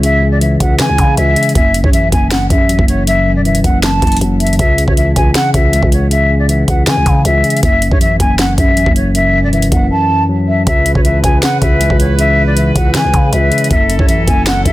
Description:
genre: hip hop, trap.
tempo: 158 BPM.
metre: 4/4.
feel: half-time.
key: C# minor.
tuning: A4 = 440 Hz.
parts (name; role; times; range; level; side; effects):
breathy concert flute; melody; 0.0-14.7 s; C#5 to A5; -15 LUFS; left 1 dB; low-pass filter, tape echo.
mellow tine electric piano; accompaniment; 0.0-14.7 s; F#2 to G#3; -15 LUFS; left 1 dB; low-pass filter.
growling 808-style bass; bass; 0.0-14.7 s; E1 to E3; -15 LUFS; equal; none.
trap drum kit; drums; 0.0-14.7 s; finger snaps, hi-hat, kick drum, snare drum; -14 LUFS; equal; none.
clear brass ensemble; sustained chords; 10.7-14.7 s; E3 to B4; -22 LUFS; right 4 dB; none.
room: light reverb.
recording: dense, heavily limited modern master.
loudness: -9 LUFS.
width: side -16 dB against mid.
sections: 0.0-14.7 A section.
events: drums muted 9.9-10.7.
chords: 0.0 C#m; 1.6 F#m7; 4.6 C#m; 7.6 F#m7; 10.7 C#m7; 13.7 F#m7.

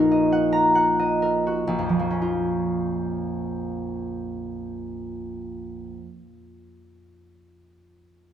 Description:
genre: classical, solo harp piece.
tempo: 60-78 BPM.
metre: 3/4.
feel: rubato.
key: Bb minor.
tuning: A4 = 441 Hz.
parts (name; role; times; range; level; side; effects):
concert harp; solo; 0.0-6.5 s; Bb1 to Bb5; -22 LUFS; equal; none.
room: wet recital hall reverb, RT60 1.7 s.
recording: dark, warm production.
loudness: -22 LUFS.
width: side -10 dB against mid.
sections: 0.0-1.7 A section; 1.7-6.6 B section.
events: slowing down 0.0-1.7.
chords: 0.0 Ebm/Bb; 1.7 Bbm.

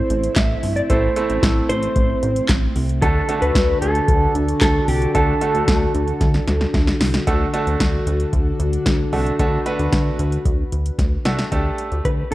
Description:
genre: synth-pop.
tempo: 113 BPM.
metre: 4/4.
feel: straight.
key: unclear.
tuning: A4 = 439 Hz.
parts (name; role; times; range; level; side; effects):
mellow electric guitar; melody; 0.0-7.0, 12.1-12.3 s; G4 to E5; -22 LUFS; right 1 dB; spring reverb.
chorused pulse-width pad; sustained chords; 0.0-11.5 s; D3 to B4; -24 LUFS; equal; none.
chorused synth bass; bass; 0.0-12.3 s; G1 to D2; -21 LUFS; equal; none.
electro analog drum machine; drums; 0.1-12.3 s; handclaps, hi-hat, kick drum, snare drum; -20 LUFS; equal; overdrive.
bright concert grand piano; accompaniment; 0.9-12.2 s; A3 to B4; -24 LUFS; right 2 dB; none.
room: light reverb, digital ambience.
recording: worn, warbling old tape, cassette tape, warbly pitch drift.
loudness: -16 LUFS.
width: side -16 dB against mid.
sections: 0.0-7.3 A section; 7.3-11.5 B section.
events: drum fill 6.2-7.3, 11.0-11.5.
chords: 0.0 Am; 3.0 D; 11.5 Dsus4.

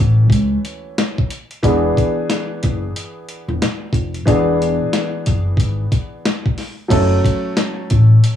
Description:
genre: hip hop, boom-bap hip-hop.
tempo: 91 BPM.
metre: 4/4.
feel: swing 59% on 16ths.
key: F# minor.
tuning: A4 = 440 Hz.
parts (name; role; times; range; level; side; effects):
dark upright piano; accompaniment; 0.0-8.4 s; E3 to A4; -20 LUFS; equal; high-pass filter, low-pass filter, cassette tape.
upright bass; bass; 0.0-8.2 s; E1 to C#2; -15 LUFS; left 1 dB; none.
dusty soul sampler-style drum kit; drums; 0.0-8.4 s; crash cymbal, hi-hat, kick drum, snare drum; -18 LUFS; left 1 dB; cassette tape.
room: light reverb.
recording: home recording on cassette.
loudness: -15 LUFS.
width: side -10 dB against mid.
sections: 0.0-6.9 A section; 6.9-8.4 B section.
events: none.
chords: 0.0 F#m7; 1.6 E7; 6.9 F#m.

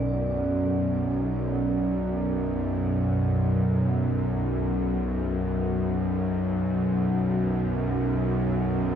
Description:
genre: dark ambient drone.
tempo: free time.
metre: none.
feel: none.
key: unclear.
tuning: A4 = 441 Hz.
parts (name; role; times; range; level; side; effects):
deep dark ambient pad; sustained chords; 0.0-9.0 s; B3 to F#5; -40 LUFS; equal; none.
dark detuned synth bell; arpeggios; 0.0-1.9 s; A4; -51 LUFS; left 2 dB; none.
bowed-like drone; drone; 0.0-9.0 s; B1 to F#2; -24 LUFS; equal; built-in reverb.
bronze singing bowl; texture; 0.0-9.0 s; D5; -38 LUFS; right 1 dB; shimmer reverb.
room: wet cathedral reverb, RT60 5.2 s.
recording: in a vast, echoing space.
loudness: -24 LUFS.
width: side -8 dB against mid.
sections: 0.0-9.0 A section.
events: none.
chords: 0.0 D6/B.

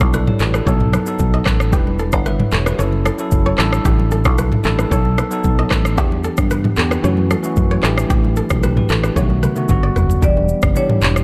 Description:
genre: afrobeats.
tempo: 113 BPM.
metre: 4/4.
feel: straight.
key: A mixolydian.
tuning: A4 = 440 Hz.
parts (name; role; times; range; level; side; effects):
bell-like tine electric piano; accompaniment; 0.0-11.2 s; D3 to F#5; -24 LUFS; equal; none.
fingered electric bass; bass; 0.0-11.2 s; E1 to G2; -20 LUFS; equal; none.
afro-pop drum kit; drums; 0.0-11.2 s; handclaps, kick drum, rim click, shaker, toms; -20 LUFS; equal; none.
kora; riff; 0.1-10.1 s; G4 to D#5; -28 LUFS; equal; delay.
congas; percussion; 0.1-11.0 s; none; -30 LUFS; equal; none.
marimba with medium mallets; melody; 10.2-11.2 s; C#5 to D5; -23 LUFS; equal; delay.
ethereal airy pad; sustained chords; 10.8-11.2 s; E3 to E4; -34 LUFS; equal; none.
room: light reverb.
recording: dark, warm production.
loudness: -16 LUFS.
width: mono.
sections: 0.0-10.2 A section; 10.2-11.2 B section.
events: drum fill 9.2-10.2.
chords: 0.0 A7sus4; 0.7 B7; 1.7 Em7; 2.8 F#m7; 3.6 A7sus4; 4.9 B7; 6.0 Em7; 7.0 F#m7; 7.8 A7sus4; 9.2 B7; 9.7 Gmaj7; 10.2 Em7.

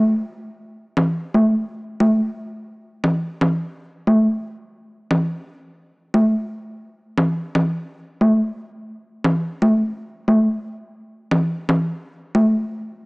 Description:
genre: house.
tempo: 116 BPM.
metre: 4/4.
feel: swing 55% on 16ths.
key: none.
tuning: none.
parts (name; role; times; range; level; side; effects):
congas; percussion; 1.0-12.4 s; none; -17 LUFS; equal; overdrive.
room: light reverb.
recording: small speaker sound.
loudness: -18 LUFS.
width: side -34 dB against mid.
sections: 0.0-13.1 A section.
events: none.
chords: none.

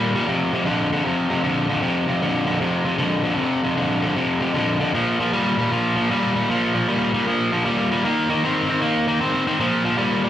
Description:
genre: blues.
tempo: 154 BPM.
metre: 4/4.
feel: swing 65% on 8ths.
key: Bb major.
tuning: A4 = 440 Hz.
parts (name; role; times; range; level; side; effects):
cranked stack guitar; solo; 0.0-10.3 s; F2 to C4; -18 LUFS; equal; overdrive, spring reverb, slapback echo, tape echo.
room: light reverb.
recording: live gig heard through the venue's PA, club reverb.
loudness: -18 LUFS.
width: side -11 dB against mid.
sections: 0.0-6.5 A section; 6.5-10.3 B section.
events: none.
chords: 0.3 F5; 4.9 Bb5; 8.1 Eb5; 9.6 Bb5.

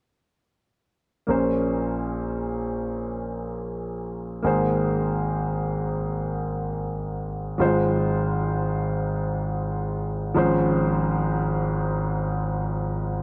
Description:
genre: pop.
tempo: free time.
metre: none.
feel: none.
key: Bb minor.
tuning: A4 = 440 Hz.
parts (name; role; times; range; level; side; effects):
clear concert grand piano; accompaniment; 1.3-13.2 s; Ab1 to C5; -26 LUFS; equal; none.
room: moderate plate reverb, RT60 3.7 s.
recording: dark, warm production.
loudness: -26 LUFS.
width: mono.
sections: 1.3-13.2 A section.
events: none.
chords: 1.3 Bbmadd9; 4.4 Abadd9; 7.6 Fm/Ab; 10.4 Dbmaj7/Ab.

